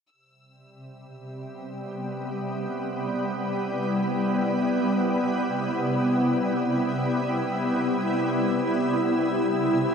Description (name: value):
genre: ambient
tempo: free time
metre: none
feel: none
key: C major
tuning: A4 = 441 Hz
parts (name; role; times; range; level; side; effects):
- shimmering ambient pad; sustained chords; 1.3-9.9 s; C3 to E4; -23 LUFS; equal; chorus, built-in reverb
- clear studio violin section; texture; 0.1-9.9 s; E6; -47 LUFS; left 2 dB; none
room: wet huge ambient reverb, RT60 9.0 s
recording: dreamy mix soaked in reverb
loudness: -23 LUFS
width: side -6 dB against mid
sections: 0.1-9.9 A section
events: fade-in on violin section 0.1-9.9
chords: 0.1 Cmaj7